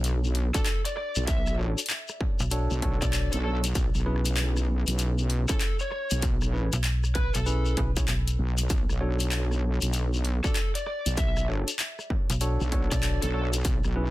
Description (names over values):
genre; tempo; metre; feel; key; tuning
glitch hop; 97 BPM; 4/4; swing 63% on 16ths; B dorian; A4 = 437 Hz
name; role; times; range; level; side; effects
tine electric piano; stabs; 0.0-14.1 s; C#4 to D5; -35 LUFS; equal; sidechain pumping, dub echo
wobble bass; bass; 0.0-14.1 s; B1; -26 LUFS; equal; chorus
dubstep drum kit; drums; 0.0-13.9 s; handclaps, hi-hat, rim click; -32 LUFS; left 2 dB; none
shekere; percussion; 0.0-13.9 s; none; -35 LUFS; left 4 dB; none
lead guitar through a small cranked amp; melody; 0.5-13.5 s; A4 to E5; -36 LUFS; equal; overdrive, dub echo
electronic kick drum; drums; 0.5-13.8 s; none; -28 LUFS; equal; distortion
slap-like FM bass; bass; 2.4-8.4, 12.3-13.2 s; B1; -26 LUFS; equal; none
room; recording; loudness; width
little or no reverb; dense, heavily limited modern master; -24 LUFS; side -17 dB against mid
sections
0.0-14.1 A section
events
none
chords
0.0 Bm7; 3.8 Bsus4; 8.7 Bm7